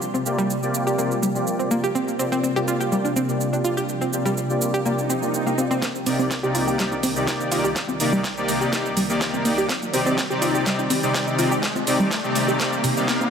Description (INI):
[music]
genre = progressive house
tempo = 124 BPM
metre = 4/4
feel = straight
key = unclear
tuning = A4 = 441 Hz
[part]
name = shimmering ambient pad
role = sustained chords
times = 0.0-13.3 s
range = C2 to D5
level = -29 LUFS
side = right 1 dB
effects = chorus, built-in reverb, sidechain pumping
[part]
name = pop drum kit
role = drums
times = 0.0-13.3 s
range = hi-hat, shaker, snare drum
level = -28 LUFS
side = right 2 dB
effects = high-pass filter on perc, high-pass filter on snare, high-pass filter on hats
[part]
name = analog pluck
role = arpeggios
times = 0.1-13.2 s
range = C3 to G4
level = -25 LUFS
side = right 1 dB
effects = chorus, sidechain pumping, tape echo
[part]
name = soft supersaw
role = stabs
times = 0.3-13.2 s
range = C3 to G5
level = -24 LUFS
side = left 1 dB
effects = cassette tape, sidechain pumping, low-pass filter, tape echo
[part]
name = swell and riser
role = sound effects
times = 5.0-13.3 s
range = none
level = -30 LUFS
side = equal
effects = none
[part]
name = electronic kick drum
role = drums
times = 5.8-13.2 s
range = none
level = -32 LUFS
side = equal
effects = none
[sound]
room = moderate lush hall reverb, RT60 2.2 s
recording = none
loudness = -20 LUFS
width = side -7 dB against mid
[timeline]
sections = 0.0-5.8 A section; 5.8-13.3 B section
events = filter sweep on ambient pad 0.0-5.8; swell 5.0-5.8; build-up 5.8-13.3; drum fill 5.8-13.3; riser 5.8-13.3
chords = 0.0 Gm7/C; 5.8 Ebmaj7/C